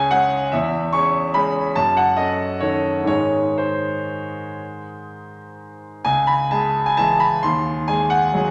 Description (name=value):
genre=classical, piano waltz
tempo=114-152 BPM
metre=3/4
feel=rubato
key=C# minor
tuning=A4 = 440 Hz
part: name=bright concert grand piano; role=solo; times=0.0-8.5 s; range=C#2 to C#6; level=-20 LUFS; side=equal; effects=none
room=wet concert hall reverb, RT60 2.1 s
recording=none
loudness=-20 LUFS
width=mono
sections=0.0-6.1 A section; 6.1-8.5 B section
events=none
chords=0.0 C#5; 0.5 C#m/E; 1.8 D#m7b5/F#; 3.1 G#; 6.1 C#m; 7.4 G#7/D#